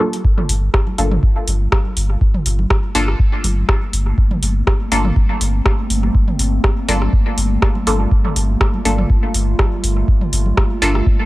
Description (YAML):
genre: dub techno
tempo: 122 BPM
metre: 4/4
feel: swing 54% on 16ths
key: G minor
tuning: A4 = 438 Hz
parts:
  - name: warbly tape-like pad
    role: sustained chords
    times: 0.0-11.3 s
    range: G3 to G4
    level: -26 LUFS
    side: equal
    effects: chorus, built-in reverb, sidechain pumping
  - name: filtered dub chord stab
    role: stabs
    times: 0.0-11.0 s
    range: Bb3 to A4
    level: -22 LUFS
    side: equal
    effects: phaser, sidechain pumping, dub echo
  - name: electronic congas and toms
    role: percussion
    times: 0.0-10.6 s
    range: none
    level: -27 LUFS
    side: right 1 dB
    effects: overdrive, sidechain pumping on perc, sidechain pumping on toms, dub echo
  - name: booming analog drum machine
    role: drums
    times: 0.1-11.0 s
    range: hi-hat, rim click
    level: -21 LUFS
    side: equal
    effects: dub echo
  - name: electronic kick drum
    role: drums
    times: 0.2-11.2 s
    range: none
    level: -16 LUFS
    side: equal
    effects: none
  - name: pure sine sub bass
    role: bass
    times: 0.5-11.0 s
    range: G1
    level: -17 LUFS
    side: equal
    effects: sidechain pumping
room: little or no reverb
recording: dry, gritty hardware recording, cassette tape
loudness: -14 LUFS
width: side -18 dB against mid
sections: 0.2-11.3 A section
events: none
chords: 0.2 Gm9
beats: | 0.25 0.74 1.23 1.72 | 2.21 2.71 3.20 3.69 | 4.18 4.67 5.16 5.66 | 6.15 6.64 7.13 7.62 | 8.12 8.61 9.10 9.59 | 10.08 10.57 11.06